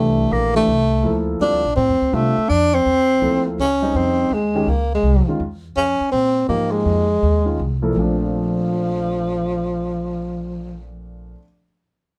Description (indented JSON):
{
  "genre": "modal jazz",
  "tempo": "165 BPM",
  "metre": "3/4",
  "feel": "swing 66% on 8ths",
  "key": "Bb lydian",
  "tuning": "A4 = 439 Hz",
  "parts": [
    { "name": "breathy tenor saxophone", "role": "melody", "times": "0.0-10.9 s", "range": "F3 to D4", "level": "-21 LUFS", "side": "equal", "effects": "none" },
    { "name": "dark concert grand piano", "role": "accompaniment", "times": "0.0-11.4 s", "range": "Bb2 to A4", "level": "-26 LUFS", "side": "equal", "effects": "none" },
    { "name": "upright bass", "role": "bass", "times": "0.0-11.3 s", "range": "Bb1 to C3", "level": "-25 LUFS", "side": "equal", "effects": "none" }
  ],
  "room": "light reverb",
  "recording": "band playing live in one room",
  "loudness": "-19 LUFS",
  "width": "mono",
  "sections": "0.0-7.9 A section; 7.9-10.1 B section",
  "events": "none",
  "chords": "0.0 Bbmaj9; 3.6 Dbmaj9; 7.9 Bbmaj9"
}